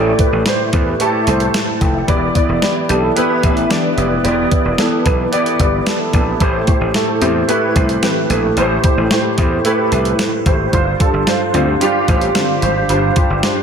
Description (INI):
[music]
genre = 1980s-style pop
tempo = 111 BPM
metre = 4/4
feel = straight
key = A minor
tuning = A4 = 441 Hz
[part]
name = dark baby grand piano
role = accompaniment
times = 0.0-13.6 s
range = G2 to A5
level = -15 LUFS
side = right 1 dB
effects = ensemble chorus
[part]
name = gritty slap bass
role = bass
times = 0.0-13.4 s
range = E1 to E2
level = -19 LUFS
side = equal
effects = overdrive
[part]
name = clean 12-bit digital drum machine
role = drums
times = 0.2-13.6 s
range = hi-hat, kick drum, snare drum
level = -18 LUFS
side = equal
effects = none
[part]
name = funky polysynth comp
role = stabs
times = 2.9-3.9, 7.2-8.3, 11.5-12.6 s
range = D3 to G4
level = -23 LUFS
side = left 3 dB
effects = chorus
[sound]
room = wet plate reverb, RT60 2.2 s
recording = dreamy mix soaked in reverb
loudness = -13 LUFS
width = side -7 dB against mid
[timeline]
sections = 0.0-13.6 A section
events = none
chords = 0.0 Am7; 2.1 Em7; 6.4 Am7; 10.7 G7sus4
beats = 0.46 1.00 1.54 | 2.08 2.62 3.16 3.70 | 4.24 4.78 5.32 5.87 | 6.41 6.95 7.49 8.03 | 8.57 9.11 9.65 10.19 | 10.73 11.27 11.81 12.35 | 12.89 13.43